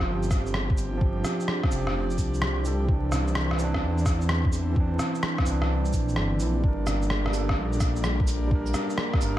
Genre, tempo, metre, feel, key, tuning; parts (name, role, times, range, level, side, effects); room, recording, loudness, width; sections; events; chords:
future garage; 128 BPM; 4/4; swing 67% on 16ths; A4 = 443 Hz
overdriven tine electric piano; accompaniment; 0.0-9.4 s; E3 to Bb4; -31 LUFS; right 4 dB; vintage 12-bit sampler grit, sidechain pumping, dub echo
airy breathy pad; sustained chords; 0.0-9.4 s; E3 to G4; -32 LUFS; left 2 dB; chorus, sidechain pumping
swelling detuned saw bass; bass; 0.0-9.4 s; F1 to E2; -27 LUFS; equal; sidechain pumping
electronic kick drum; drums; 0.0-9.2 s; -25 LUFS; equal; overdrive
electronic shaker, rim click and cabasa; drums; 0.2-9.3 s; -30 LUFS; equal
light reverb, digital ambience; vinyl crackle; -23 LUFS; side -13 dB against mid
0.0-9.4 A section
0.0 Fsus2; 2.9 Cadd9; 6.6 Gm